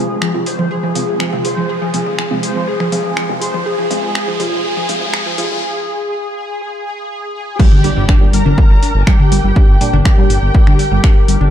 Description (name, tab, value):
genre	melodic techno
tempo	122 BPM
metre	4/4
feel	straight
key	G phrygian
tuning	A4 = 435 Hz
part	wide unison lead	melody	0.0-11.4 s	G4 to C5	-21 LUFS	left 1 dB	ensemble chorus, sidechain pumping, dub echo
part	deep dark ambient pad	sustained chords	1.4-11.5 s	Ab4 to D6	-27 LUFS	left 2 dB	chorus, built-in reverb, vintage 12-bit sampler grit, sidechain pumping
part	tight sequenced synth	arpeggios	0.0-11.5 s	F3 to Ab4	-21 LUFS	right 1 dB	chorus, sidechain pumping, digital delay
part	filtered dub chord stab	stabs	0.0-11.5 s	Bb2 to F4	-23 LUFS	right 2 dB	phaser, lush chorus, cassette tape, sidechain pumping, digital delay
part	riser and impact	sound effects	0.0-9.6 s	none	-24 LUFS	equal	none
part	swelling detuned saw bass	bass	0.1-11.5 s	F1 to G1	-18 LUFS	equal	sidechain pumping, high-pass filter
part	techno drum kit	drums	0.2-11.5 s	congas, crash cymbal, finger snaps, hi-hat	-20 LUFS	left 2 dB	high-pass filter on hats, high-pass filter on snare, high-pass filter on perc, high-pass filter on cymbals, high-pass filter on room
part	warm studio violin section	second line	7.6-11.4 s	G5 to Bb5	-25 LUFS	equal	sidechain pumping, digital delay
part	electronic kick drum	drums	7.6-11.1 s	none	-10 LUFS	equal	none
room	moderate concert hall reverb, RT60 1.9 s, digital ambience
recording	dark, warm production, high-pass filter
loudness	-12 LUFS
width	side -10 dB against mid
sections	0.0-7.6 A section; 7.6-11.5 B section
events	build-up 0.0-7.6; riser 0.0-5.6; filter sweep on analog synth lead 0.0-7.6; filter sweep on synth stab 0.0-7.6; filter sweep on ambient pad 0.0-7.6; break 5.6-7.6; drop 7.6-11.5; impact 7.6-9.6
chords	0.0 Fm; 7.6 Gm